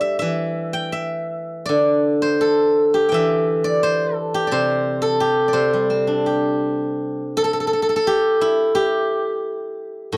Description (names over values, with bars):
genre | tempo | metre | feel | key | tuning
chinese traditional, Chinese solo plucked strings | 79-90 BPM | 2/4 | rubato | C gong mode | A4 = 440 Hz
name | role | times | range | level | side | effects
steel-string zither | solo | 0.0-10.2 s | A2 to G5 | -20 LUFS | equal | none
room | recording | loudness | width
little or no reverb | dry, close 1970s-style studio recording | -20 LUFS | mono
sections
0.0-7.4 A section; 7.4-10.2 B section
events
none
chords
none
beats
| 0.23 0.96 | 1.71 2.45 | 3.16 3.85 | 4.54 5.21 | 5.90 6.64 | 7.38 8.11 | 8.80 9.47 | 10.15